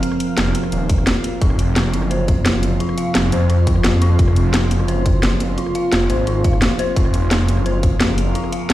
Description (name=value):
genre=dark technical drum and bass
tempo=173 BPM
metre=4/4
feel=straight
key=F phrygian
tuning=A4 = 439 Hz
part: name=metallic inharmonic drone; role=sustained chords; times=0.0-8.7 s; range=F3 to Bb4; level=-25 LUFS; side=right 3 dB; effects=chorus, built-in reverb, sidechain pumping
part: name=drum and bass drum kit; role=drums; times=0.0-8.7 s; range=hi-hat, rim click, snare drum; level=-21 LUFS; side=equal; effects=overdrive
part: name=deep dark ambient pad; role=texture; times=0.0-8.7 s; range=C4 to F6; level=-26 LUFS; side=right 1 dB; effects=chorus, built-in reverb, sidechain pumping
part: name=wide detuned saw bass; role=bass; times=0.4-8.7 s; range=Eb1 to F2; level=-18 LUFS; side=equal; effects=chorus, overdrive
part: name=electronic kick drum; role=drums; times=0.9-7.9 s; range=none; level=-18 LUFS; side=equal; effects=none
part: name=dark detuned synth bell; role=arpeggios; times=1.4-8.6 s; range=F4 to F5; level=-26 LUFS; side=left 3 dB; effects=chorus, sidechain pumping, digital delay
room=light reverb, digital ambience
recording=played on a big sound system in a bare room, large studio reverb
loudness=-15 LUFS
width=side -14 dB against mid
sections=0.0-8.7 A section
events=none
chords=0.0 F5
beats=| 0.03 0.38 0.72 1.07 | 1.42 1.76 2.11 2.46 | 2.80 3.15 3.50 3.84 | 4.19 4.54 4.88 5.23 | 5.58 5.92 6.27 6.62 | 6.96 7.31 7.66 8.01 | 8.35 8.70